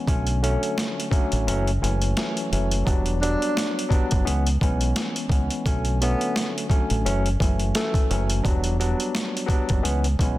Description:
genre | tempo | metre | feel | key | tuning
hip hop, boom-bap hip-hop | 86 BPM | 4/4 | swing 57% on 16ths | B minor | A4 = 440 Hz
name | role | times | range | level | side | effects
barky tine electric piano | accompaniment | 0.0-10.4 s | D3 to D4 | -26 LUFS | left 1 dB | fast stereo tremolo, high-pass filter, low-pass filter
deep dub fingered electric bass | bass | 0.1-10.4 s | E1 to C#2 | -24 LUFS | equal | none
boom bap sampler-style drum kit | drums | 0.1-10.4 s | hi-hat, kick drum, snare drum | -24 LUFS | equal | overdrive
breathy tenor saxophone | melody | 3.2-8.1 s | A3 to D4 | -28 LUFS | equal | high-pass filter, low-pass filter, digital delay
room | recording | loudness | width
digital ambience | dense, heavily limited modern master | -21 LUFS | side -16 dB against mid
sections
0.0-10.4 A section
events
kick muted 1.5-2.9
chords
0.1 Bm9; 1.5 F#m7; 2.9 Em9; 4.3 C#m7; 5.7 Bm9; 7.1 F#m7; 8.4 Em9; 9.8 C#m7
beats
| 0.07 0.77 1.47 2.17 | 2.87 3.56 4.26 4.96 | 5.66 6.36 7.05 7.75 | 8.45 9.14 9.84

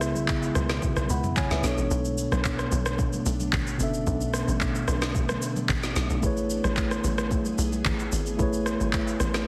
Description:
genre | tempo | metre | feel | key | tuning
amapiano | 111 BPM | 4/4 | straight | B dorian | A4 = 440 Hz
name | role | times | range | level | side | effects
mellow tine electric piano | accompaniment | 0.0-9.5 s | B2 to B5 | -31 LUFS | equal | none
ethereal airy pad | sustained chords | 0.0-9.5 s | B2 to G#4 | -38 LUFS | equal | none
tight log drum bass | bass | 0.0-9.4 s | F#1 to C#2 | -32 LUFS | equal | none
smooth R&B drum kit | drums | 0.0-9.5 s | handclaps, kick drum, rim click, shaker, snare drum, toms | -31 LUFS | equal | none
congas | percussion | 0.2-9.3 s | none | -40 LUFS | equal | none
room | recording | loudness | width
digital ambience | heavily compressed radio sound | -26 LUFS | mono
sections
0.0-9.5 A section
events
kick muted 1.9-2.4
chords
0.0 C#m7; 1.6 Bm9; 6.2 Amaj9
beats
0.29 0.83 1.37 | 1.91 2.45 2.99 3.53 | 4.07 4.61 5.15 5.69 | 6.23 6.77 7.31 7.85 | 8.39 8.93

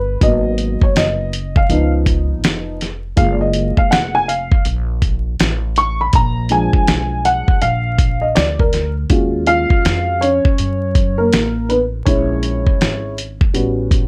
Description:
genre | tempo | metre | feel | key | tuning
hip hop, jazz-hop | 81 BPM | 4/4 | swing 64% on 16ths | Eb minor | A4 = 440 Hz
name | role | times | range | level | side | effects
dark upright piano | accompaniment | 0.0-14.1 s | F3 to Db6 | -20 LUFS | equal | none
upright bass | bass | 0.0-14.1 s | F1 to Gb2 | -23 LUFS | equal | none
dusty soul sampler-style drum kit | drums | 0.2-14.1 s | hi-hat, kick drum, snare drum | -18 LUFS | equal | vintage 12-bit sampler grit
room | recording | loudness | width
light reverb | vinyl crackle | -16 LUFS | mono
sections
0.0-9.1 A section; 9.1-14.1 B section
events
upright piano solo 0.0-9.1, 9.1-14.1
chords
0.2 Abm7; 1.7 Db7; 3.2 Gbmaj9; 6.1 Bb7; 9.1 Ebm11; 12.1 Bbm7b5; 13.5 A13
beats
| 0.21 0.95 1.69 2.43 | 3.17 3.91 4.65 5.39 | 6.13 6.87 7.62 8.36 | 9.10 9.84 10.58 11.32 | 12.06 12.80 13.54

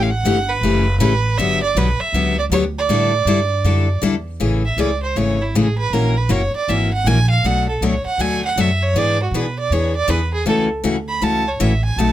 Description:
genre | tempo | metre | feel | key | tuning
acoustic string swing (jazz manouche) | 158 BPM | 4/4 | swing 63% on 8ths | A major from 4.4 s | A4 = 439 Hz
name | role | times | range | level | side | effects
clear violin | melody | 0.0-12.1 s | E4 to B5 | -20 LUFS | right 4 dB | none
picked steel-string acoustic guitar | accompaniment | 0.0-12.1 s | B2 to A#4 | -19 LUFS | left 4 dB | none
upright bass | bass | 0.0-12.1 s | F#1 to B2 | -20 LUFS | right 1 dB | none
room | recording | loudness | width
little or no reverb | close, detailed microphones | -15 LUFS | side -12 dB against mid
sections
0.0-4.4 A section; 4.4-12.1 B section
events
violin solo 4.4-12.1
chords
0.0 A13; 1.4 Gmaj7; 2.9 A7sus4; 4.4 Amaj7; 5.9 F#7; 7.4 Bm7; 8.9 E7; 10.5 F#m7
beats
0.25 0.63 1.01 | 1.39 1.76 2.14 2.52 | 2.90 3.27 3.65 4.03 | 4.41 4.78 5.16 5.54 | 5.92 6.30 6.68 7.05 | 7.43 7.81 8.19 8.57 | 8.95 9.33 9.71 10.08 | 10.46 10.84 11.22 11.60 | 11.98

